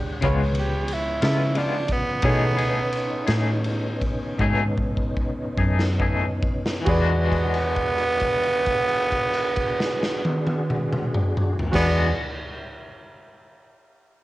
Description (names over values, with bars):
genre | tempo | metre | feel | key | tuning
slow blues | 44-60 BPM (dotted quarters) | 12/8 | straight | E mixolydian | A4 = 439 Hz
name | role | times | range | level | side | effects
growling tenor saxophone | melody | 0.0-12.1 s | B3 to G4 | -25 LUFS | right 2 dB | cassette tape
bright upright piano | accompaniment | 0.0-12.1 s | G#3 to F#5 | -31 LUFS | right 1 dB | cassette tape
tonewheel organ | sustained chords | 0.0-12.1 s | C#3 to F#5 | -32 LUFS | left 1 dB | slow rotary speaker, chorus vibrato, cassette tape
vintage muted fingered electric bass | bass | 0.0-12.1 s | C#2 to C#3 | -25 LUFS | equal | none
twangy electric guitar | accompaniment | 0.2-12.2 s | B2 to G#4 | -29 LUFS | left 4 dB | tremolo, cassette tape
raw garage drum kit | drums | 0.2-11.9 s | crash cymbal, kick drum, ride cymbal, snare drum, toms | -26 LUFS | equal | none
room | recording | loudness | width
light reverb, studio ambience | home recording on cassette | -20 LUFS | side -17 dB against mid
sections
0.0-6.9 A section; 6.9-12.3 B section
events
slowing down 0.9-6.9; drum fill 4.4-6.9; held note 6.9-11.7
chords
0.2 C#7; 2.2 B13; 6.9 E9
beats
0.23 1.23 | 2.24 3.29 4.39 5.58 | 6.86 8.21 9.56 10.92